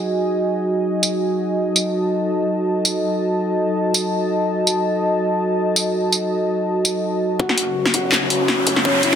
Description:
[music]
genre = half-time drum and bass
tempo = 165 BPM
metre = 4/4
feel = swing 53% on 16ths, half-time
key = F# dorian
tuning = A4 = 440 Hz
[part]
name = dark analog pad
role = sustained chords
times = 0.0-9.2 s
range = C#4 to A5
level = -19 LUFS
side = equal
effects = chorus, sidechain pumping
[part]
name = drum and bass drum kit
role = drums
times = 1.0-9.2 s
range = handclaps, hi-hat, snare drum, tambourine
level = -19 LUFS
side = equal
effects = high-pass filter on perc, high-pass filter on snare, high-pass filter on hats, high-pass filter on room
[part]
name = felt-muted upright piano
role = arpeggios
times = 7.4-9.2 s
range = C#4 to F#4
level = -22 LUFS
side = left 2 dB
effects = low-pass filter, tape echo
[part]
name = growling 808-style bass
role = bass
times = 7.4-9.2 s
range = F#1 to C#2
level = -33 LUFS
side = left 1 dB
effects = none
[part]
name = electronic kick drum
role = drums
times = 7.4-8.9 s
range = none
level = -26 LUFS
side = left 1 dB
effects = high-pass filter on kick, high-pass filter on room
[part]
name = riser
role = sound effects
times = 7.7-9.2 s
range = none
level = -22 LUFS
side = left 1 dB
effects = none
[sound]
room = moderate lush hall reverb, RT60 1.9 s, digital ambience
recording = dense, heavily limited modern master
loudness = -17 LUFS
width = side -8 dB against mid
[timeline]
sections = 0.0-7.4 A section; 7.4-9.2 B section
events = build-up 7.4-9.2; filter sweep on felt piano 7.4-9.2; riser 7.7-9.2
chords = 0.0 F#5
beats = | 0.13 0.49 0.85 1.22 | 1.58 1.95 2.31 2.67 | 3.04 3.40 3.76 4.13 | 4.49 4.85 5.22 5.58 | 5.95 6.31 6.67 7.04 | 7.40 7.76 8.13 8.49 | 8.85

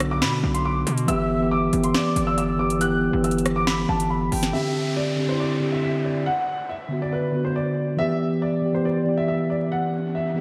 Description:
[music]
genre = hip hop, drill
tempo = 139 BPM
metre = 4/4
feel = half-time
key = unclear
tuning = A4 = 440 Hz
[part]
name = dark concert grand piano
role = melody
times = 0.0-10.4 s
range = B4 to F#6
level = -29 LUFS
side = equal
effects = lush chorus, diffuse ambient delay
[part]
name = mellow tine electric piano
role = accompaniment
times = 0.0-10.4 s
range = D3 to G4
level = -25 LUFS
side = equal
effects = none
[part]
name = distorted 808-style bass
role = bass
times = 0.0-4.5 s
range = G1 to B2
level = -29 LUFS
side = equal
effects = distortion
[part]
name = drill drum kit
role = drums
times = 0.0-4.5 s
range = hi-hat, rim click, snare drum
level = -30 LUFS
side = equal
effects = none
[part]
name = mellow concert flute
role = second line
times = 1.1-4.5 s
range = D5 to G5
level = -37 LUFS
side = equal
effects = diffuse ambient delay
[part]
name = downlifter and riser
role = sound effects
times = 4.5-10.4 s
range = none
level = -39 LUFS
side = equal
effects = none
[sound]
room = wet lush hall reverb, RT60 1.7 s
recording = dreamy mix soaked in reverb, vinyl crackle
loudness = -23 LUFS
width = mono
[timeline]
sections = 0.0-4.5 A section; 4.5-10.4 B section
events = none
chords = 0.0 Bm; 1.1 G6; 4.5 Csus2; 6.3 Bm; 8.0 G6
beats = 0.22 0.65 | 1.08 1.51 1.95 2.38 | 2.81 3.24 3.67 4.10 | 4.54 4.97 5.40 5.83 | 6.26 6.69 7.12 7.56 | 7.99 8.42 8.85 9.28 | 9.71 10.15

